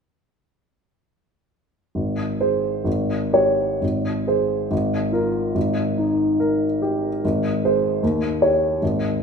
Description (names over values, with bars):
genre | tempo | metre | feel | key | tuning
classical, romantic character piece for solo piano | 59-78 BPM | 2/4 | rubato | Ab major | A4 = 440 Hz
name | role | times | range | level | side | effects
dark upright piano | solo | 1.9-9.2 s | Ab1 to Db5 | -19 LUFS | equal | none
room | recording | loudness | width
wet recital hall reverb, RT60 1.5 s | minimal, uncompressed stereo recording | -19 LUFS | side -5 dB against mid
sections
2.0-3.8 A section; 3.8-9.2 B section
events
none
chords
2.0 Ab; 2.9 Absus4; 3.8 Ab; 4.7 Bb5/Ab; 5.6 Eb/Ab; 7.2 Ab; 8.0 Eb7